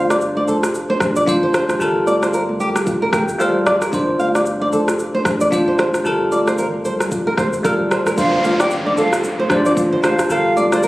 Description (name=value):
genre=afrobeats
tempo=113 BPM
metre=4/4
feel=swing 58% on 16ths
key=unclear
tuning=A4 = 438 Hz
part: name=bell-like tine electric piano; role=accompaniment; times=0.0-10.9 s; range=G3 to G5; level=-18 LUFS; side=equal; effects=phaser
part: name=flamenco guitar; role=riff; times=0.0-10.9 s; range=G4 to F5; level=-20 LUFS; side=right 1 dB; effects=tape echo
part: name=punchy sub bass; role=bass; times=0.0-10.9 s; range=F1 to A1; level=-31 LUFS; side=equal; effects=none
part: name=afro-pop drum kit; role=drums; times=0.1-10.9 s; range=kick drum, rim click, shaker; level=-22 LUFS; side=equal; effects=none
part: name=congas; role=percussion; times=0.4-10.9 s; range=none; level=-28 LUFS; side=equal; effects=none
part: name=bright concert flute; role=melody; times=8.2-10.8 s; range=D5 to G5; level=-21 LUFS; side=right 1 dB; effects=tape echo
part: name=downlifter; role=sound effects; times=8.2-10.9 s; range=none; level=-25 LUFS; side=equal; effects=none
room=moderate lush hall reverb, RT60 1.8 s, small room ambience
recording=recorded on a phone in the room, club reverb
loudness=-15 LUFS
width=side -18 dB against mid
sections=0.0-8.2 A section; 8.2-10.9 B section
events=tine electric piano fill 2.9-3.9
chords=0.0 Dm7; 1.8 Gm9; 3.9 Dm7; 6.1 Gm9; 8.2 Dm7; 10.3 Gm9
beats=0.21 0.74 1.27 | 1.80 2.34 2.87 3.40 | 3.93 4.46 4.99 5.52 | 6.05 6.58 7.12 7.65 | 8.18 8.71 9.24 9.77 | 10.30 10.83